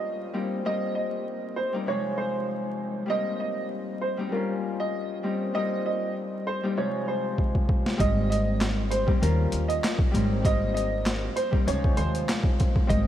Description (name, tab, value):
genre	hip hop, boom-bap hip-hop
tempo	98 BPM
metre	4/4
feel	swing 54% on 16ths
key	Ab major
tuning	A4 = 440 Hz
part	clear upright piano	melody	0.0-13.1 s	Bb4 to Eb5	-30 LUFS	right 2 dB	analog chorus, high-pass filter, low-pass filter, analog delay
part	Celtic harp	accompaniment	0.0-13.1 s	C3 to F4	-30 LUFS	left 2 dB	high-pass filter, low-pass filter
part	boom bap sampler-style drum kit	drums	7.4-13.1 s	handclaps, hi-hat, kick drum, snare drum	-25 LUFS	equal	overdrive
part	upright bass	bass	8.0-13.1 s	Ab1 to Eb2	-26 LUFS	equal	none
room	moderate huge ambient reverb, RT60 7.3 s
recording	dreamy mix soaked in reverb, vinyl crackle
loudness	-24 LUFS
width	side -11 dB against mid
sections	0.0-8.0 A section; 8.0-13.1 B section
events	drum fill 7.4-8.0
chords	0.3 Eb6/G; 1.9 Dbmaj9/C; 3.1 Eb6/G; 4.3 Eb7; 5.2 Eb6/G; 6.8 Dbmaj9/C; 8.0 Abmaj7; 9.2 Eb7; 10.1 Abmaj7; 11.7 Dbmaj7